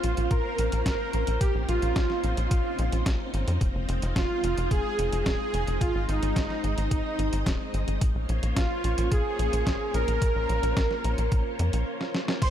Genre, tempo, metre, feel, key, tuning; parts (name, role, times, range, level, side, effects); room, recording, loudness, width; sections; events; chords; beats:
synthwave; 109 BPM; 4/4; straight; Bb minor; A4 = 440 Hz
soft supersaw; melody; 0.0-12.5 s; Eb4 to C5; -30 LUFS; right 2 dB; tape echo
string machine, full ensemble; sustained chords; 0.0-12.5 s; F3 to F5; -34 LUFS; left 1 dB; ensemble chorus, sidechain pumping
tight sequencer bass; bass; 0.0-12.5 s; Eb1 to F2; -28 LUFS; equal; tube saturation, sidechain pumping
detuned 8-bit digital drum machine; drums; 0.0-12.5 s; crash cymbal, hi-hat, snare drum; -34 LUFS; equal
electronic kick drum; drums; 0.3-12.5 s; -27 LUFS; equal
airy dreamy lead; second line; 12.4-12.5 s; C6; -28 LUFS; right 5 dB; chorus
digital ambience; -24 LUFS; side -10 dB against mid
0.0-12.4 A section
break 11.9-12.4; drum fill 12.0-12.4
0.0 Bbmadd9; 3.6 Fm7; 5.8 Ab; 8.0 Bbmadd9
0.31 0.86 | 1.41 1.96 2.51 3.06 | 3.61 4.16 4.71 5.26 | 5.81 6.36 6.91 7.46 | 8.02 8.57 9.12 9.67 | 10.22 10.77 11.32 11.87 | 12.42